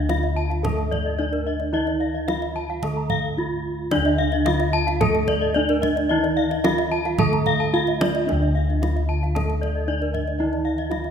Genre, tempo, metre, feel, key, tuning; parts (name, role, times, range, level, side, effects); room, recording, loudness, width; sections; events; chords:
Balinese gamelan; 110 BPM; 4/4; straight; D pelog; A4 = 445 Hz
gamelan-type bronze metallophone; melody; 0.0-11.1 s; D4 to A4-30c; -25 LUFS; equal
gamelan-type bronze metallophone; accompaniment; 0.0-11.1 s; D3 to A3-30c; -31 LUFS; right 1 dB
gamelan-type bronze metallophone; arpeggios; 0.0-11.0 s; D5 to A5-30c; -26 LUFS; left 5 dB
gamelan-type bossed gongs; bass; 0.0-11.1 s; D2 to Eb4+20c; -25 LUFS; equal
kendang; percussion; 0.1-11.1 s; -29 LUFS; right 3 dB
gamelan-type bronze metallophone; arpeggios; 0.2-11.1 s; Bb4-20c to Bb5-20c; -31 LUFS; right 4 dB
wet scoring stage reverb, RT60 1.8 s; minimal, uncompressed stereo recording; -20 LUFS; side -7 dB against mid
0.0-3.9 A section; 3.9-11.1 A section
drum fill 3.2-3.9